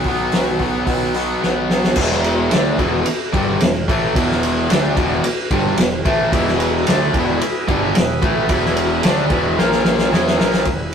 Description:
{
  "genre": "blues rock power trio and southern rock",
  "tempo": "110 BPM",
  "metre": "4/4",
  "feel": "straight",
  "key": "E mixolydian",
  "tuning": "A4 = 439 Hz",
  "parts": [
    { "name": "overdriven tonewheel organ", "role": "sustained chords", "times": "0.0-2.0, 6.3-10.9 s", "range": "A#3 to B4", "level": "-26 LUFS", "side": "right 1 dB", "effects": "slow rotary speaker" },
    { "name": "raw garage guitar", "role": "riff", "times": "0.0-10.7 s", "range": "E2 to E4", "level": "-18 LUFS", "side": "equal", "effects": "overdrive" },
    { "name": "vintage drum kit", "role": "drums", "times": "0.0-10.8 s", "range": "crash cymbal, hi-hat, kick drum, ride cymbal, snare drum", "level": "-19 LUFS", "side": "equal", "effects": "none" },
    { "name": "growling fingered electric bass", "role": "bass", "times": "0.1-10.9 s", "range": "E1 to E2", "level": "-26 LUFS", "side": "equal", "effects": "overdrive" }
  ],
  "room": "moderate stone room reverb, RT60 1.4 s",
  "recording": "rough rehearsal-room recording, tube saturation",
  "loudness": "-15 LUFS",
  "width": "side -7 dB against mid",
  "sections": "0.0-2.0 A section; 2.0-10.7 B section",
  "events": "drum fill 1.4-2.0, 9.6-10.7",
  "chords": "0.0 B; 2.0 E; 9.6 A#5; 10.1 E",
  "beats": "0.33 0.88 1.42 | 1.97 2.51 3.05 3.60 | 4.14 4.68 5.23 5.77 | 6.32 6.86 7.40 7.95 | 8.49 9.04 9.58 10.13 | 10.67"
}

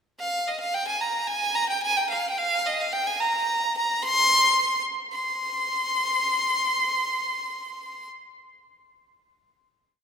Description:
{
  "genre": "klezmer",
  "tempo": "110 BPM",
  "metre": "2/4",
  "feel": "straight",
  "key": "C minor",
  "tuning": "A4 = 440 Hz",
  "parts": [
    { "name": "bright violin", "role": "solo", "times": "0.2-8.1 s", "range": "Eb5 to C6", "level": "-22 LUFS", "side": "equal", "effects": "none" }
  ],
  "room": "wet church reverb, RT60 2.9 s",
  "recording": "recorded in a church or concert hall",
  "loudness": "-22 LUFS",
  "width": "side -6 dB against mid",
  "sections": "0.0-0.7 pickup bar; 0.7-5.1 A section; 5.1-7.3 final note",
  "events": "none",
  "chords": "none",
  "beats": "0.20 | 0.75 1.29 | 1.84 2.39 | 2.93 3.48 | 4.03 4.58 | 5.13 5.68 | 6.22 6.77"
}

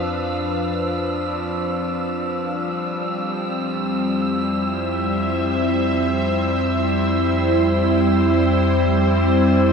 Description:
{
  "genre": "ambient",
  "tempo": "free time",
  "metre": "none",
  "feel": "none",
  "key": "unclear",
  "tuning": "A4 = 442 Hz",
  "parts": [
    { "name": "evolving wavetable pad", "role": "sustained chords", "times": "0.0-9.7 s", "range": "F3 to F5", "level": "-19 LUFS", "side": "equal", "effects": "chorus, built-in reverb" },
    { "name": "deep rumbling drone", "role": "bass", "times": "0.0-9.7 s", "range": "F2", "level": "-25 LUFS", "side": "equal", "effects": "built-in reverb" },
    { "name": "hand-pumped harmonium", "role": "drone", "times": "0.0-9.7 s", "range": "F3", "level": "-30 LUFS", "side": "left 2 dB", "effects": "none" },
    { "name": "wind-like tuned noise texture", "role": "texture", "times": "0.0-9.7 s", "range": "E6", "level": "-28 LUFS", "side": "right 1 dB", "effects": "built-in reverb" }
  ],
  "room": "wet shimmer reverb, RT60 7.8 s",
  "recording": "dark, warm production",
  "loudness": "-18 LUFS",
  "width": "side -5 dB against mid",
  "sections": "0.0-9.7 A section",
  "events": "fade-in on ambient pad 0.0-9.7; fade-in on synth drone 0.0-9.7; fade-in on synth texture 0.0-9.7; fade-out on harmonium 0.0-9.7",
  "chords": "0.0 Fmaj7(no3); 2.4 C/F",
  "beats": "free time"
}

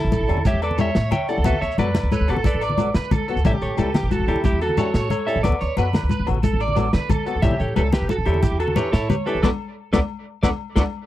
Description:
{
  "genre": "highlife guitar band",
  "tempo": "120 BPM (dotted quarters)",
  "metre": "12/8",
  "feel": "straight",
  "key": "A mixolydian",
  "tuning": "A4 = 440 Hz",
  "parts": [
    { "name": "clean electric guitar", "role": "melody", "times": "0.0-10.8 s", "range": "E4 to G5", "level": "-25 LUFS", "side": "equal", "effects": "none" },
    { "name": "upright bass", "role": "bass", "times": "0.0-10.8 s", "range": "A1 to D3", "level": "-23 LUFS", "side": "equal", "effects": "none" },
    { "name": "electric guitar at the edge of break-up", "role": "arpeggios", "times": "0.1-10.8 s", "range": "G4 to D5", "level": "-27 LUFS", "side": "right 5 dB", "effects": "ensemble chorus, tape echo" },
    { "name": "crunchy breakbeat drum kit", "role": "drums", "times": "0.1-10.8 s", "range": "hi-hat, kick drum, snare drum", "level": "-22 LUFS", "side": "equal", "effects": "none" },
    { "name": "congas", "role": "percussion", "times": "0.1-10.8 s", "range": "none", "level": "-26 LUFS", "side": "left 4 dB", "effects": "none" },
    { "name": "shekere", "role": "percussion", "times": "0.1-10.8 s", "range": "none", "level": "-27 LUFS", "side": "right 3 dB", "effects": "none" },
    { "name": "fingerpicked swing-style acoustic guitar", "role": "accompaniment", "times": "0.3-10.8 s", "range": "F#3 to A4", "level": "-27 LUFS", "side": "left 6 dB", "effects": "none" },
    { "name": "agogo bells", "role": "percussion", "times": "0.3-10.8 s", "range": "none", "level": "-34 LUFS", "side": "left 20 dB", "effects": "none" }
  ],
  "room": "little or no reverb",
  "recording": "dry, close 1970s-style studio recording",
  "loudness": "-18 LUFS",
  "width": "side -14 dB against mid",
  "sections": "0.0-11.1 A section",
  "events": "band accent 9.4-11.1; drum fill 10.4-11.1",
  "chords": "0.0 A7; 1.5 D6; 3.4 A7; 5.4 D6; 7.4 A7; 9.4 D6",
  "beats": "0.45 0.95 | 1.45 1.95 2.45 2.95 | 3.44 3.94 4.44 4.94 | 5.44 5.94 6.44 6.94 | 7.44 7.94 8.44 8.93 | 9.43 9.93 10.43"
}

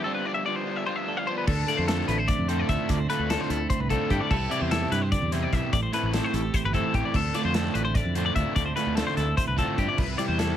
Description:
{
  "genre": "math rock and midwest emo",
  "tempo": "296 BPM (eighths)",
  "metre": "7/8",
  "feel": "straight",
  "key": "unclear",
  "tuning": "A4 = 440 Hz",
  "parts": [
    { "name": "twelve-string electric guitar", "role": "accompaniment", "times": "0.0-10.6 s", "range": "A2 to C5", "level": "-31 LUFS", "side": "right 7 dB", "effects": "none" },
    { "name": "twelve-string electric guitar", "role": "arpeggios", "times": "0.0-10.6 s", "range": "G4 to F5", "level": "-29 LUFS", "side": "left 4 dB", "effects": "none" },
    { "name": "raw garage guitar", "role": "riff", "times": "0.0-10.6 s", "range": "G2 to A4", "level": "-31 LUFS", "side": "left 2 dB", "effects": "overdrive" },
    { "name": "fingered electric bass", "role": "bass", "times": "1.5-10.5 s", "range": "G1 to G2", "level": "-28 LUFS", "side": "equal", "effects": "none" },
    { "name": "modern studio drum kit", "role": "drums", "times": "1.5-10.5 s", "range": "crash cymbal, hi-hat, kick drum, snare drum", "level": "-30 LUFS", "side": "equal", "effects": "none" }
  ],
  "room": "light reverb",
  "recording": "none",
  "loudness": "-23 LUFS",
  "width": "side -10 dB against mid",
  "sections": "0.0-1.5 A section; 1.5-10.6 B section",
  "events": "break 0.0-1.5",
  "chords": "0.0 G7sus4; 1.5 Dm9; 4.3 Cmaj9; 5.7 Am9; 7.1 Dm9; 10.0 Cmaj9",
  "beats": "| 0.05 0.25 0.45 0.66 0.86 1.06 1.27 | 1.47 1.67 1.87 2.08 2.28 2.48 2.69 | 2.89 3.09 3.29 3.50 3.70 3.90 4.10 | 4.31 4.51 4.71 4.91 5.12 5.32 5.52 | 5.72 5.93 6.13 6.33 6.54 6.74 6.94 | 7.14 7.35 7.55 7.75 7.95 8.16 8.36 | 8.56 8.77 8.97 9.17 9.37 9.58 9.78 | 9.98 10.19 10.39"
}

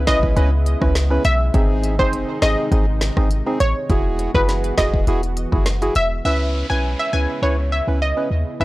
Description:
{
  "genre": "dancehall",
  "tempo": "102 BPM",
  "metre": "4/4",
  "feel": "straight",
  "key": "C# minor",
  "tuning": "A4 = 440 Hz",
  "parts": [
    { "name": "percussive organ stab", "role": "accompaniment", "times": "0.0-8.6 s", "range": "B#3 to B4", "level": "-24 LUFS", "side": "right 1 dB", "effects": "chorus" },
    { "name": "lush unison pad", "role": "sustained chords", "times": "0.0-8.6 s", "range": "B#2 to F#4", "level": "-30 LUFS", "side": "right 1 dB", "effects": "chorus, sidechain pumping" },
    { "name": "clean 808-style bass", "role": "bass", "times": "0.0-8.6 s", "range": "E1 to D#2", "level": "-20 LUFS", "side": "equal", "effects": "none" },
    { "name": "analog pluck", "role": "melody", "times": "0.1-8.6 s", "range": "B4 to G#5", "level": "-22 LUFS", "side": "equal", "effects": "chorus, tape echo" },
    { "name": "afro-pop drum kit", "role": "drums", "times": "0.1-6.1 s", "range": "hi-hat, kick drum, rim click, snare drum", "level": "-20 LUFS", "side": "equal", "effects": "none" },
    { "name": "downlifter", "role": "sound effects", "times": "6.2-8.6 s", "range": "none", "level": "-35 LUFS", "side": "equal", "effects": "none" }
  ],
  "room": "little or no reverb",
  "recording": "dry, gritty hardware recording, transformer saturation, cassette tape",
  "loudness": "-16 LUFS",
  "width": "side -18 dB against mid",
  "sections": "0.0-6.2 A section; 6.2-8.6 B section",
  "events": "none",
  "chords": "0.0 C#m7; 1.5 G#; 3.9 Eadd9; 6.2 C#m7",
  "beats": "0.37 0.95 | 1.54 2.13 2.72 3.31 | 3.90 4.49 5.07 5.66 | 6.25 6.84 7.43 8.01 | 8.60"
}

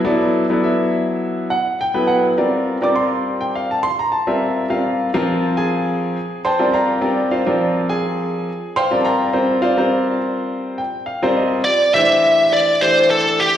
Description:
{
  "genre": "jazz",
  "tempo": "103 BPM",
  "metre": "4/4",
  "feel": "swing 53% on 16ths",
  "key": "unclear",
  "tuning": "A4 = 441 Hz",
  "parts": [
    { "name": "clear grand piano", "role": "accompaniment", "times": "0.0-13.5 s", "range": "E3 to D6", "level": "-17 LUFS", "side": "equal", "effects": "slapback echo" },
    { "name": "bluesy overdriven lead guitar", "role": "melody", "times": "11.6-13.6 s", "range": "G4 to E5", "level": "-12 LUFS", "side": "equal", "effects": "distortion, slapback echo, tape echo" }
  ],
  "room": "moderate plate reverb, RT60 3.0 s",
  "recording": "live gig heard through the venue's PA, recital hall reverb",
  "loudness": "-15 LUFS",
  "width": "side -10 dB against mid",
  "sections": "0.0-11.7 A section; 11.7-13.6 B section",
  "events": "grand piano fill 10.5-11.7",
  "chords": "0.0 Asus24; 2.4 C13sus4; 7.0 Fsus24; 11.7 Gsus24",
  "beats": "| 0.05 0.63 1.21 1.79 | 2.37 2.95 3.53 4.11 | 4.69 5.27 5.85 6.43 | 7.01 7.59 8.17 8.75 | 9.33 9.91 10.49 11.07 | 11.65 12.23 12.81 13.40"
}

